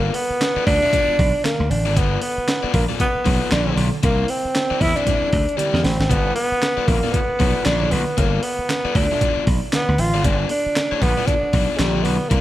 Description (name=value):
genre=funk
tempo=116 BPM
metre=4/4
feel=swing 60% on 16ths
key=G mixolydian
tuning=A4 = 438 Hz
part: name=breathy tenor saxophone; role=melody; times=0.0-12.4 s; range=G3 to F4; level=-21 LUFS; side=equal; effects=slapback echo
part: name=crunchy overdriven guitar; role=accompaniment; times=0.0-12.4 s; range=B3 to E5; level=-26 LUFS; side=left 8 dB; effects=none
part: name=slap bass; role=bass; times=0.0-12.4 s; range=G1 to E2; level=-21 LUFS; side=equal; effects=none
part: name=breakbeat sampler-style drum kit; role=drums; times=0.1-12.4 s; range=handclaps, hi-hat, kick drum, snare drum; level=-23 LUFS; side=equal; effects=none
part: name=congas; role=percussion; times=0.4-12.4 s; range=none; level=-30 LUFS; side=right 4 dB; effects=none
room=light reverb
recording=none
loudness=-17 LUFS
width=side -14 dB against mid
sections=0.0-12.4 A section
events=drum fill 5.6-6.1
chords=0.0 G9 (rootless); 4.0 C9; 6.1 G9 (rootless)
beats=0.41 0.93 1.45 | 1.97 2.48 3.00 3.52 | 4.04 4.55 5.07 5.59 | 6.11 6.62 7.14 7.66 | 8.18 8.69 9.21 9.73 | 10.25 10.76 11.28 11.80 | 12.31